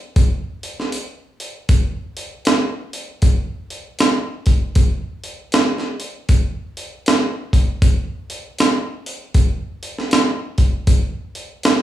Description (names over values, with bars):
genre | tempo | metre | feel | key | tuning
rock | 78 BPM | 4/4 | swing 62% on 8ths | none | none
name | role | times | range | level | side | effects
jungle sampler-style drum kit | drums | 0.2-11.8 s | hi-hat, kick drum, snare drum | -16 LUFS | equal | none
room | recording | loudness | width
moderate large studio reverb, RT60 1.1 s | band playing live in one room, studio reverb | -16 LUFS | side -12 dB against mid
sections
0.0-11.8 A section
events
break 0.9-1.7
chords
none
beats
0.16 0.93 | 1.70 2.46 3.23 4.00 | 4.76 5.53 6.29 7.06 | 7.82 8.59 9.35 10.12 | 10.88 11.64